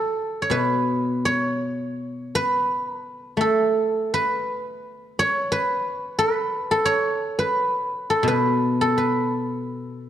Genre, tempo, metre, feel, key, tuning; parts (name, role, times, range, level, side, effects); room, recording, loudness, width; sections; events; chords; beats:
chinese traditional, Chinese solo plucked strings; 79-90 BPM; 4/4; rubato; A4 = 440 Hz
guzheng; solo; 0.0-10.1 s; B2 to C#5; -21 LUFS; equal
light reverb; dark, warm production; -20 LUFS; side -10 dB against mid
0.0-10.1 A section
0.50 1.23 1.96 | 2.68 3.39 4.11 4.81 | 5.49 6.16 6.85 7.55 | 8.24 8.96 9.70